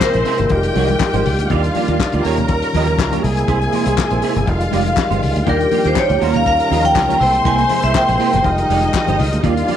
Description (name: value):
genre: disco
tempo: 121 BPM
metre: 4/4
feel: straight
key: Eb major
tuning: A4 = 439 Hz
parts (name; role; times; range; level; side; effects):
- vibraphone with hard mallets; melody; 0.0-1.2, 5.5-9.2 s; Bb4 to Ab5; -17 LUFS; equal; none
- clear studio string section; second line; 0.0-9.8 s; C4 to C6; -21 LUFS; left 1 dB; none
- semi-hollow electric guitar; accompaniment; 0.0-9.8 s; Ab3 to Eb5; -24 LUFS; right 14 dB; ensemble chorus
- percussive tonewheel organ; sustained chords; 0.0-9.8 s; C3 to F4; -22 LUFS; equal; overdrive, chorus vibrato, slow rotary speaker
- warm soul drum kit; drums; 0.0-9.8 s; hi-hat, kick drum, snare drum; -23 LUFS; left 3 dB; none
- group handclap; percussion; 0.0-9.1 s; none; -26 LUFS; left 11 dB; none
- fingered electric bass; bass; 0.1-9.6 s; F1 to Eb2; -19 LUFS; equal; none
- congas; percussion; 0.1-9.8 s; none; -28 LUFS; left 8 dB; none
room: light reverb, small room ambience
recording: 1960s-style stereo with parts hard left and right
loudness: -13 LUFS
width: side -10 dB against mid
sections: 0.0-9.8 A section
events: none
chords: 0.0 C7b13; 0.5 Fm9; 1.5 Ebmaj9; 2.2 Eb9; 3.2 C7b13; 4.5 Fm9; 5.5 Ebmaj9; 6.2 Eb9; 7.2 C7b13; 8.4 Fm9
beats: 0.01 0.50 1.00 | 1.50 1.99 2.49 2.99 | 3.48 3.98 4.47 4.97 | 5.47 5.96 6.46 6.96 | 7.45 7.95 8.44 8.94 | 9.44